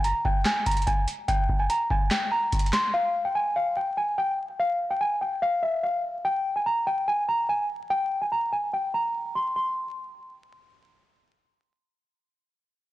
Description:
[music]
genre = hip hop, trap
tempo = 145 BPM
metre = 4/4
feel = half-time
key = unclear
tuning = A4 = 438 Hz
[part]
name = small celesta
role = melody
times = 0.0-10.8 s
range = E5 to C6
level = -25 LUFS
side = equal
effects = low-pass filter
[part]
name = booming analog drum machine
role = drums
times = 0.0-2.8 s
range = handclaps, hi-hat, kick drum, snare drum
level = -26 LUFS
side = equal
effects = none
[sound]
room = light reverb, digital ambience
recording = blown-out, overdriven recording, vinyl crackle, overdrive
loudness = -24 LUFS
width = side -15 dB against mid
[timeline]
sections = 0.0-9.6 A section; 9.6-12.9 B section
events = filter sweep on celesta 0.0-9.6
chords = none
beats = 0.04 0.46 0.87 | 1.28 1.70 2.11 2.52 | 2.94 3.35 3.77 4.18 | 4.59 5.01 5.42 5.83 | 6.25 6.66 7.08 7.49 | 7.90 8.32 8.73 9.14 | 9.56 9.97 10.39

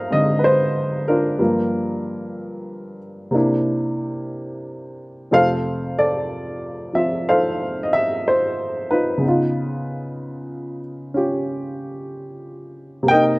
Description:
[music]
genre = solo jazz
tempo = 62 BPM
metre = 4/4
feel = swing 66% on 8ths, rubato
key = unclear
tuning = A4 = 440 Hz
[part]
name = warm upright piano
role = solo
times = 0.0-13.4 s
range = F2 to G5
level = -19 LUFS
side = equal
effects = slapback echo
[sound]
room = light reverb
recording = recorded outdoors, with no room sound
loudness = -18 LUFS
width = side -25 dB against mid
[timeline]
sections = 0.0-13.4 A section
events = none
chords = 0.0 Abmaj9; 1.4 Gm7; 3.3 C9; 5.3 F; 9.2 Db9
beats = 0.44 | 1.40 2.37 3.35 4.33 | 5.33 6.31 7.29 8.26 | 9.23 10.19 11.16 12.12 | 13.09

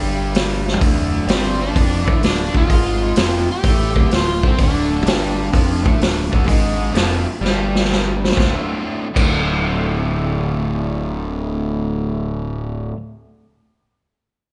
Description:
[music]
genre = blues rock power trio and southern rock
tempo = 127 BPM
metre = 4/4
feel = swing 68% on 8ths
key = D minor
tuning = A4 = 439 Hz
[part]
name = crunchy overdriven guitar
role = riff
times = 0.0-13.0 s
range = D2 to F4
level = -25 LUFS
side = equal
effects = spring reverb
[part]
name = fuzz fingered electric bass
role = bass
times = 0.0-12.9 s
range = D1 to C2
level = -24 LUFS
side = equal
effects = overdrive
[part]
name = vintage drum kit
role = drums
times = 0.3-9.2 s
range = crash cymbal, hi-hat, kick drum, snare drum, toms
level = -20 LUFS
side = equal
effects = none
[part]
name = overdriven slide guitar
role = melody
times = 1.3-7.9 s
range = C4 to G4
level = -26 LUFS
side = equal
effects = none
[sound]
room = light reverb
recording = band playing live in one room, nothing above 10.9 kHz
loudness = -18 LUFS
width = mono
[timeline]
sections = 0.0-8.4 A section; 8.4-12.1 B section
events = drum fill 0.6, 7.4-8.4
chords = 0.0 Dm; 8.4 Dm7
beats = 0.34 | 0.81 1.28 1.75 2.23 | 2.70 3.17 3.64 4.12 | 4.59 5.06 5.53 6.00 | 6.48 6.95 7.42 7.89 | 8.36 8.84 9.31 9.78 | 10.25 10.72 11.20 11.67

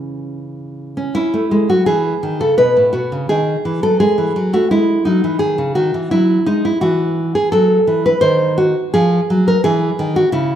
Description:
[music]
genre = classical, baroque-style dance for nylon-string guitar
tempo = 85 BPM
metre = 4/4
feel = rubato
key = C# minor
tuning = A4 = 441 Hz
[part]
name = nylon-string guitar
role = solo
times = 0.0-10.6 s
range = A2 to B#4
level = -13 LUFS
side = equal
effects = none
[sound]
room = moderate scoring stage reverb, RT60 1.8 s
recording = minimal, uncompressed stereo recording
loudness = -13 LUFS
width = side -10 dB against mid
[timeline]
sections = 0.0-1.2 A section; 1.2-10.6 B section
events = none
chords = 0.0 C#m; 2.6 B; 4.0 G#5; 6.8 Esus2; 8.2 D#m69; 9.6 C#m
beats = 0.42 | 1.16 1.87 2.59 3.30 | 4.01 4.71 5.41 6.12 | 6.82 7.53 8.23 8.94 | 9.64 10.34

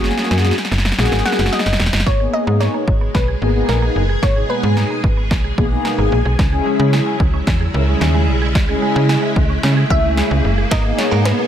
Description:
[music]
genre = dance-pop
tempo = 111 BPM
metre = 4/4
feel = straight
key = G# minor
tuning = A4 = 439 Hz
[part]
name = mellow synth brass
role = accompaniment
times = 0.0-11.5 s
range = G#3 to A#4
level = -20 LUFS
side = left 2 dB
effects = chorus, sidechain pumping
[part]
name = slap-like FM bass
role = bass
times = 0.0-11.3 s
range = E1 to C#3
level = -17 LUFS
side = equal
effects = sidechain pumping
[part]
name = punchy analog drum machine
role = drums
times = 0.0-11.4 s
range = hi-hat, kick drum, snare drum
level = -18 LUFS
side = equal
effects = overdrive
[part]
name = glassy wavetable pluck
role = melody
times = 1.3-5.5, 9.9-11.5 s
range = A#4 to F#5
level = -23 LUFS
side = equal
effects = chorus, dub echo
[part]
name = string machine, violins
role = sustained chords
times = 2.1-11.5 s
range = B2 to G#4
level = -25 LUFS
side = equal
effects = ensemble chorus, sidechain pumping
[part]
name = mallet-like synth pluck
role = arpeggios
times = 2.1-11.5 s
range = G#3 to G#4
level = -29 LUFS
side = right 7 dB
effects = chorus, sidechain pumping, dub echo
[part]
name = riser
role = sound effects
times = 5.0-11.5 s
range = none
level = -27 LUFS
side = right 1 dB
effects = none
[part]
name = direct-recorded clean electric guitar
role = riff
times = 10.7-11.4 s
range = B3 to A#4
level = -26 LUFS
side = right 6 dB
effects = lush chorus
[sound]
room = light reverb, digital ambience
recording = none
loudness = -14 LUFS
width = side -10 dB against mid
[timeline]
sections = 0.0-2.1 A section; 2.1-11.5 B section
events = drum fill 0.0-2.1, 2.1-11.5; build-up 2.1-11.5; riser 5.0-11.5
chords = 0.0 F#add9; 2.1 G#madd9; 6.4 C#m; 10.7 G#madd9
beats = 0.45 0.98 1.53 | 2.07 2.61 3.15 3.69 | 4.23 4.77 5.31 5.85 | 6.39 6.93 7.47 8.01 | 8.55 9.09 9.63 10.18 | 10.71 11.26

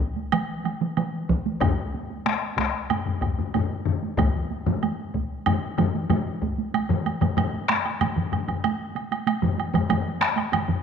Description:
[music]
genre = japanese traditional, taiko drum ensemble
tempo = 94 BPM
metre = 4/4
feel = straight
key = none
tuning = none
[part]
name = taiko ensemble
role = percussion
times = 0.2-10.7 s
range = none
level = -30 LUFS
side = right 7 dB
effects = none
[part]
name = taiko ensemble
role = percussion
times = 0.3-10.8 s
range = none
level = -28 LUFS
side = right 4 dB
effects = none
[part]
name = woodblock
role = percussion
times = 0.3-10.7 s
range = none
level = -30 LUFS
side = right 6 dB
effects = none
[part]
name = taiko ensemble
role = percussion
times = 1.3-6.6 s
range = none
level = -28 LUFS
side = left 2 dB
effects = none
[part]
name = taiko ensemble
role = percussion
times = 1.6-10.8 s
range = none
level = -26 LUFS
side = left 6 dB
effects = none
[sound]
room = wet echo chamber reverb, RT60 1.9 s, studio reverb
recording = 1960s-style stereo with parts hard left and right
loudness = -23 LUFS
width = side -7 dB against mid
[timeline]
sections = 0.0-6.7 A section; 6.7-10.8 B section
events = none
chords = none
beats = 0.33 0.97 | 1.61 2.26 2.90 3.54 | 4.18 4.82 5.46 6.10 | 6.73 7.37 8.00 8.64 | 9.27 9.90 10.53

